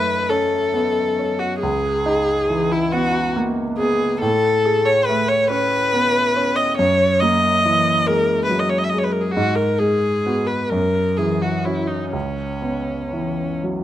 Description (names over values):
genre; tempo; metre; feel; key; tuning
classical, impressionist duo for viola and grand piano; 40-48 BPM (dotted quarters); 6/8; rubato; C# minor; A4 = 440 Hz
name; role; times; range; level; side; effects
rich viola; melody; 0.0-13.6 s; C#4 to E5; -19 LUFS; left 1 dB; none
clear grand piano; accompaniment; 0.0-13.8 s; C#2 to G#4; -21 LUFS; right 1 dB; none
room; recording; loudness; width
moderate recital hall reverb, RT60 1.3 s; close, detailed microphones; -17 LUFS; side -12 dB against mid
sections
0.0-13.8 A section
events
none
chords
0.0 F#m6; 1.6 C#m9; 4.2 Amaj7; 6.8 F#9; 9.4 G#m7; 10.7 F#5; 12.1 C#m7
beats
0.30 | 1.62 2.92 | 4.22 5.50 | 6.78 8.08 | 9.37 10.73 | 12.14 13.64